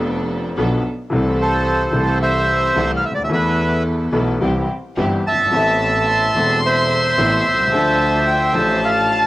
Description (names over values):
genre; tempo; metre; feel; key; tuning
tango; 109 BPM; 4/4; rubato; A minor; A4 = 437 Hz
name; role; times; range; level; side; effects
warm grand piano; accompaniment; 0.0-9.3 s; E1 to A4; -20 LUFS; left 2 dB; plate reverb
rich studio string section; stabs; 0.0-9.3 s; B3 to A4; -27 LUFS; right 2 dB; plate reverb
rich double bass; bass; 0.0-9.3 s; E1 to E2; -25 LUFS; right 1 dB; none
bandoneon; melody; 1.4-9.3 s; A4 to A5; -17 LUFS; right 1 dB; cassette tape
warm violin; second line; 5.5-9.3 s; E5 to C6; -20 LUFS; left 3 dB; plate reverb
room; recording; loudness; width
moderate booth ambience, RT60 0.2 s; home recording on cassette; -15 LUFS; side -16 dB against mid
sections
0.0-9.3 A section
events
none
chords
0.0 Bm7b5; 1.1 Am/C; 3.3 Esus4; 4.4 C; 5.5 Amadd9; 7.7 Dm